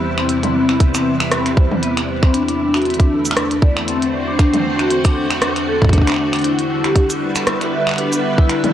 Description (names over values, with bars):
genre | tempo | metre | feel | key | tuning
IDM | 117 BPM | 4/4 | swing 56% on 16ths | unclear | A4 = 440 Hz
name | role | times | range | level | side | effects
soft string machine | sustained chords | 0.0-8.7 s | E2 to C5 | -20 LUFS | right 1 dB | ensemble chorus, vintage 12-bit sampler grit
vibraphone with soft mallets | arpeggios | 0.0-8.7 s | B3 to E5 | -19 LUFS | left 2 dB | vintage 12-bit sampler grit, analog delay
glitchy drum kit | drums | 0.2-8.7 s | cabasa, finger snaps, hi-hat, rim click, toms | -21 LUFS | right 1 dB | none
electronic kick drum | drums | 0.8-8.5 s | none | -12 LUFS | equal | none
room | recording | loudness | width
light reverb | dry, gritty hardware recording, cassette tape | -14 LUFS | side -11 dB against mid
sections
0.0-8.7 A section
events
none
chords
0.0 Cmaj7/E; 2.3 D7/E; 6.4 Em7